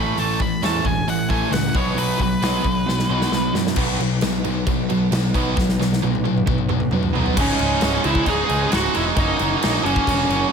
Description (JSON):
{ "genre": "quiet-loud alternative rock", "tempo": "133 BPM", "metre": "4/4", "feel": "straight", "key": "C# dorian from 7.4 s", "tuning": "A4 = 443 Hz", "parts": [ { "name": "octave-fuzz lead guitar", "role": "melody", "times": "0.0-3.5, 7.4-10.5 s", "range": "C#4 to B5", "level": "-23 LUFS", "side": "equal", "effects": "distortion, digital delay" }, { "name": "electric guitar through a small old amp", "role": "arpeggios", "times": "0.0-3.8 s", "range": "A2 to F#4", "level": "-31 LUFS", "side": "left 2 dB", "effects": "none" }, { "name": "biting overdriven guitar", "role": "riff", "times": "0.0-10.5 s", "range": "C#2 to F#4", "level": "-24 LUFS", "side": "right 13 dB", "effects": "none" }, { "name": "scooped high-gain guitar", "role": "riff", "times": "0.0-10.5 s", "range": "C#2 to F#4", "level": "-26 LUFS", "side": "left 15 dB", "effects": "distortion" }, { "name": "fuzz picked electric bass", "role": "bass", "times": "0.0-10.4 s", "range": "C#1 to F#2", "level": "-24 LUFS", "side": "left 1 dB", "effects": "overdrive" }, { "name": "big rock drum kit", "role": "drums", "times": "0.2-10.4 s", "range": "crash cymbal, hi-hat, kick drum, snare drum, toms", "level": "-24 LUFS", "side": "equal", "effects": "none" }, { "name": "mellow tonewheel organ", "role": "sustained chords", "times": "3.8-7.3 s", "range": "D#4 to F#5", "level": "-33 LUFS", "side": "left 2 dB", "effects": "slow rotary speaker, chorus vibrato" } ], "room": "light reverb", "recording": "none", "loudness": "-17 LUFS", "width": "side -6 dB against mid", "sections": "0.0-3.8 A section; 3.8-7.4 B section; 7.4-10.5 C section", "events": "lead electric guitar solo 0.0-3.8; drum fill 2.9-3.8, 5.6-7.4", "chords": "0.0 A; 1.8 B; 7.4 C#madd9; 9.2 F#" }